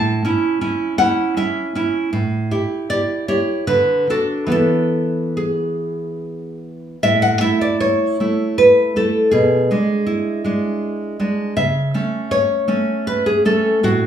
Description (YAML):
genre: romantic piece for solo classical guitar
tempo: 70-83 BPM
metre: 3/4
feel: rubato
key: A major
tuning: A4 = 440 Hz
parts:
  - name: nylon-string guitar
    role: solo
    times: 0.0-14.1 s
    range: A2 to A5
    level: -16 LUFS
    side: right 1 dB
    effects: none
room: wet large studio reverb, RT60 0.8 s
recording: band playing live in one room, studio reverb, faint mains hum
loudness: -16 LUFS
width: side -9 dB against mid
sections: 0.0-7.0 A section; 7.0-14.1 B section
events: none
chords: 0.0 A; 2.1 A5; 3.7 D; 4.5 E; 7.0 A; 9.3 E7/B; 11.6 A/C#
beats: 0.62 1.37 | 2.13 2.90 3.69 | 4.51 5.37 6.20 | 7.02 7.80 8.57 | 9.33 10.07 10.82 | 11.57 12.31 13.06 | 13.82